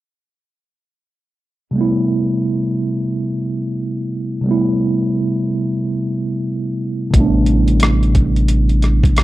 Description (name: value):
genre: R&B, neo-soul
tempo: 89 BPM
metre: 4/4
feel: swing 63% on 16ths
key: A minor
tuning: A4 = 440 Hz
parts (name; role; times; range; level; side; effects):
- mellow tine electric piano; accompaniment; 1.7-9.2 s; C3 to E4; -17 LUFS; right 1 dB; medium stereo tremolo
- round analog bass; bass; 7.1-9.2 s; A1; -14 LUFS; equal; none
- boom bap sampler-style drum kit; drums; 7.1-9.2 s; hi-hat, kick drum, rim click; -16 LUFS; equal; overdrive
room: little or no reverb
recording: dry, close 1970s-style studio recording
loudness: -15 LUFS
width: side -16 dB against mid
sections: 1.7-9.2 A section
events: none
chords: 1.7 Am9